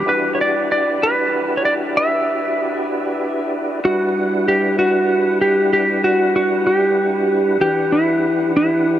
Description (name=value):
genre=blues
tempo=64 BPM (dotted quarters)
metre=12/8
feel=straight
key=E minor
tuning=A4 = 440 Hz
part: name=clean lap steel guitar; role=melody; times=0.0-9.0 s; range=E4 to E5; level=-16 LUFS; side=equal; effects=none
part: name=tonewheel organ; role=sustained chords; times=0.0-9.0 s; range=E3 to F#5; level=-21 LUFS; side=equal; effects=chorus vibrato, slow rotary speaker
room=wet huge ambient reverb, RT60 8.1 s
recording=dreamy mix soaked in reverb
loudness=-15 LUFS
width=side -11 dB against mid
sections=0.0-9.0 A section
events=none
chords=0.0 Em7